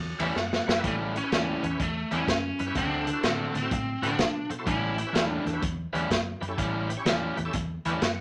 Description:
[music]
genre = electric blues shuffle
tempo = 125 BPM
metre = 4/4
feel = swing 66% on 8ths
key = A mixolydian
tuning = A4 = 440 Hz
[part]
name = vintage muted fingered electric bass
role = bass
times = 0.0-8.2 s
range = A1 to B2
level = -37 LUFS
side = equal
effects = none
[part]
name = bright tonewheel organ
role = accompaniment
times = 0.2-8.2 s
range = C#4 to A5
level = -38 LUFS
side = equal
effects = slow rotary speaker, overdrive, chorus vibrato
[part]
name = crunchy overdriven guitar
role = riff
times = 0.2-8.1 s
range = A2 to F#4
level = -34 LUFS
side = equal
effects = none
[part]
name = vintage drum kit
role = drums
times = 0.2-8.2 s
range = hi-hat, kick drum, ride cymbal, snare drum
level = -31 LUFS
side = equal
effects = none
[part]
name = biting lead guitar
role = melody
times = 0.9-5.6 s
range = A3 to E4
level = -33 LUFS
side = equal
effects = overdrive
[sound]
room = moderate studio reverb, RT60 0.6 s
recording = none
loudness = -28 LUFS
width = mono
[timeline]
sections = 0.8-8.2 A section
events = tonewheel organ fill 0.0-0.8, 7.5-8.2; drum fill 0.4-0.8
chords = 0.0 A7; 2.8 D7; 4.7 A7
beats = 0.36 | 0.84 1.32 1.80 2.27 | 2.75 3.23 3.71 4.19 | 4.67 5.15 5.62 6.10 | 6.58 7.06 7.54 8.02

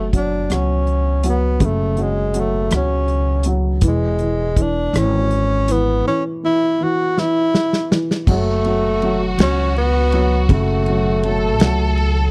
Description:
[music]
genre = six-eight pop ballad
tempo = 54 BPM (dotted quarters)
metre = 6/8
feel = straight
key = F# minor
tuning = A4 = 440 Hz
[part]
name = breathy tenor saxophone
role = melody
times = 0.0-12.3 s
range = G#3 to F#4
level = -22 LUFS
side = equal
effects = none
[part]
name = dark upright piano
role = accompaniment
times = 0.0-12.3 s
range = C#3 to F#3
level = -25 LUFS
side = equal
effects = none
[part]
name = upright bass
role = bass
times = 0.0-12.3 s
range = E1 to C#2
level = -22 LUFS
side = equal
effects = none
[part]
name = natural country drum kit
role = drums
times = 0.1-12.1 s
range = crash cymbal, hi-hat, kick drum, ride cymbal, rim click, snare drum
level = -19 LUFS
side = equal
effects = none
[part]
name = rich studio violin section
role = second line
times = 8.3-12.3 s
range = F#4 to A4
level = -28 LUFS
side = equal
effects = none
[sound]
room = little or no reverb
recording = dry, close 1970s-style studio recording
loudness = -18 LUFS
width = mono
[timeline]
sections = 0.0-8.3 A section; 8.3-12.3 B section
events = drum fill 7.2-8.3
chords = 0.0 F#m; 3.8 C#m/E; 8.3 F#m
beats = 0.50 | 1.61 2.72 | 3.83 4.94 | 6.05 7.16 | 8.27 9.38 | 10.49 11.60

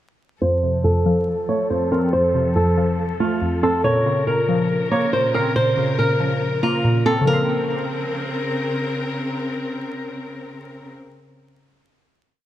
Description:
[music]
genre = hip hop, drill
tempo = 140 BPM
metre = 4/4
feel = half-time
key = Bb harmonic minor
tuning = A4 = 440 Hz
[part]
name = flamenco guitar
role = melody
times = 0.4-8.5 s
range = F4 to Db5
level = -21 LUFS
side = equal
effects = low-pass filter, tape echo
[part]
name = glassy wavetable pluck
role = accompaniment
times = 0.4-11.0 s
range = F2 to C4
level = -21 LUFS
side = equal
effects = chorus, low-pass filter, tape echo
[part]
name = warm symphonic string section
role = sustained chords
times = 0.4-10.9 s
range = Db3 to Bb4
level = -25 LUFS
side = left 1 dB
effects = low-pass filter
[sound]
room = light reverb, small room ambience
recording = echo-heavy mix, vinyl crackle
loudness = -18 LUFS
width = side -12 dB against mid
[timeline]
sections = 0.4-7.3 breakdown; 7.3-10.7 final chord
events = filter sweep 0.4-7.3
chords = 0.4 F; 3.8 Bbmadd9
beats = | 0.42 0.84 1.27 1.70 | 2.13 2.56 2.99 3.42 | 3.84 4.27 4.70 5.13 | 5.56 5.99 6.42 6.84 | 7.27 7.70 8.13 8.56 | 8.99 9.42 9.84 10.27

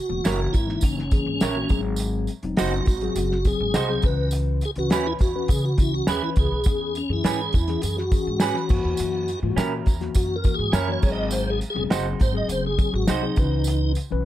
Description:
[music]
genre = uptempo 1960s-style soul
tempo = 103 BPM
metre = 4/4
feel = straight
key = unclear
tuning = A4 = 440 Hz
[part]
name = tonewheel organ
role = melody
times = 0.0-13.9 s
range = C#4 to D#5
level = -27 LUFS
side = right 1 dB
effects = overdrive, chorus vibrato, slow rotary speaker
[part]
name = mellow tine electric piano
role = accompaniment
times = 0.1-14.2 s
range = E3 to B4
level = -29 LUFS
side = left 7 dB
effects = slow stereo tremolo
[part]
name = upright bass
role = bass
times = 0.1-14.2 s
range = E1 to C#3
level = -27 LUFS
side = equal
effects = none
[part]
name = tambourine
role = percussion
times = 0.2-14.1 s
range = none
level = -38 LUFS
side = right 7 dB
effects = none
[part]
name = electric guitar through a small old amp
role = stabs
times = 0.3-13.2 s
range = C#4 to C#5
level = -30 LUFS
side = right 7 dB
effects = spring reverb
[part]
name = cloth-damped thuddy drum kit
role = drums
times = 0.3-14.1 s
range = crash cymbal, hi-hat, kick drum, snare drum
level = -22 LUFS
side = equal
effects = none
[sound]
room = little or no reverb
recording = none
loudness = -20 LUFS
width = side -13 dB against mid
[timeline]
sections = 0.0-14.2 A section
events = tonewheel organ solo 0.0-14.2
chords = 0.0 F#7; 1.7 G#7; 4.0 C#m7; 6.7 E6; 8.7 F#7; 11.0 G#7; 13.4 C#m7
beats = 0.24 0.83 1.41 | 2.00 2.58 3.16 3.75 | 4.33 4.91 5.50 6.08 | 6.66 7.25 7.83 8.41 | 8.99 9.58 10.16 10.75 | 11.33 11.91 12.50 13.08 | 13.67

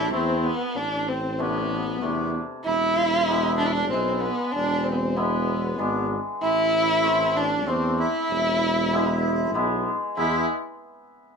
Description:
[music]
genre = klezmer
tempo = 96 BPM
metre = 3/4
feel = straight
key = unclear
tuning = A4 = 436 Hz
[part]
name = dark violin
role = melody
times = 0.0-10.5 s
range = B3 to E4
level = -26 LUFS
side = equal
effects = none
[part]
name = accordion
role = second line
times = 0.0-10.5 s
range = B3 to E4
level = -27 LUFS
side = right 1 dB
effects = none
[part]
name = warm tuba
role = bass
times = 0.0-10.5 s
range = E1 to E2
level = -28 LUFS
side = equal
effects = none
[part]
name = hammered dulcimer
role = accompaniment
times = 0.1-10.5 s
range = C3 to B4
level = -28 LUFS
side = left 2 dB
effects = none
[sound]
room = wet studio ambience, RT60 0.5 s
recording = band playing live in one room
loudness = -21 LUFS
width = side -5 dB against mid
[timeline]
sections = 0.0-10.2 A section; 10.2-11.4 B section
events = none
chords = 0.0 Am; 2.7 E; 6.4 Am; 8.3 E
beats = 0.14 | 0.77 1.40 2.03 | 2.66 3.29 3.92 | 4.54 5.17 5.80 | 6.42 7.05 7.67 | 8.30 8.92 9.55 | 10.17

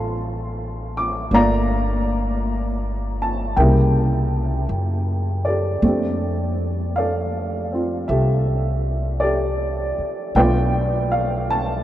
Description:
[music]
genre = jazz ballad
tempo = 53 BPM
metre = 4/4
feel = swing 67% on 8ths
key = F major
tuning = A4 = 441 Hz
[part]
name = dark upright piano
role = accompaniment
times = 0.0-11.8 s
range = Db3 to D6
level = -21 LUFS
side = equal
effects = none
[part]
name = upright bass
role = bass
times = 0.0-11.8 s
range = G1 to Gb2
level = -22 LUFS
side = equal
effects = none
[sound]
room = moderate huge ambient reverb, RT60 8.0 s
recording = in a vast, echoing space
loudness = -18 LUFS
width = side -13 dB against mid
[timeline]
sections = 0.0-11.8 A section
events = none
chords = 0.0 Dm7; 1.3 Gm7; 3.6 C7b9; 5.8 F69; 10.3 Bm7b5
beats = 0.18 | 1.32 2.44 3.57 4.70 | 5.83 6.95 8.08 9.21 | 10.34 11.47

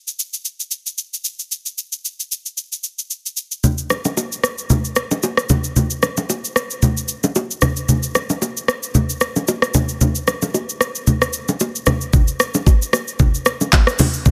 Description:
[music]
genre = amapiano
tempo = 113 BPM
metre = 4/4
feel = swing 55% on 16ths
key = none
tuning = none
[part]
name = smooth R&B drum kit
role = drums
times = 0.1-14.3 s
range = handclaps, hi-hat, kick drum, rim click, shaker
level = -21 LUFS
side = equal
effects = soft clipping on snare
[part]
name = congas and bongos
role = percussion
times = 3.6-14.3 s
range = none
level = -20 LUFS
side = equal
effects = none
[sound]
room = light reverb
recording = dense, heavily limited modern master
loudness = -19 LUFS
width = mono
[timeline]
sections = 0.0-12.1 A section; 12.1-14.3 B section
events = drop 12.1-14.3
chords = none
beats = 0.45 0.98 | 1.52 2.05 2.58 3.11 | 3.64 4.17 4.70 5.23 | 5.76 6.29 6.83 7.36 | 7.89 8.42 8.95 9.48 | 10.01 10.54 11.07 11.60 | 12.13 12.67 13.20 13.73 | 14.26

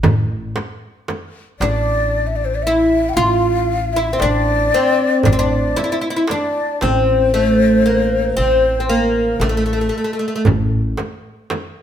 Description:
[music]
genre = Arabic maqam ensemble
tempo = 115 BPM (eighths)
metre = 10/8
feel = straight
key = A maqam kurd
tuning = A4 = 440 Hz
[part]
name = upright bass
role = bass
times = 0.0-10.9 s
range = A1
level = -21 LUFS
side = equal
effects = none
[part]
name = darbuka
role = percussion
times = 0.0-11.7 s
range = none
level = -21 LUFS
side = right 2 dB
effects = none
[part]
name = frame drum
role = percussion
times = 0.0-11.7 s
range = none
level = -22 LUFS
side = right 1 dB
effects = none
[part]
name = oud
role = melody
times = 1.6-10.4 s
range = A3 to F4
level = -17 LUFS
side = equal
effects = none
[part]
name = breathy mellow ney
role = second line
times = 1.6-10.5 s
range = A4 to G5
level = -20 LUFS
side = left 3 dB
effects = none
[sound]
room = moderate stone room reverb, RT60 1.2 s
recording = band playing live in one room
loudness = -14 LUFS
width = side -9 dB against mid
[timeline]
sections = 0.0-11.8 A section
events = none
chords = none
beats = | 0.04 0.56 1.08 1.60 2.13 2.65 3.17 3.69 4.21 4.73 | 5.25 5.77 6.29 6.82 7.34 7.86 8.38 8.90 9.42 9.94 | 10.46 10.98 11.50

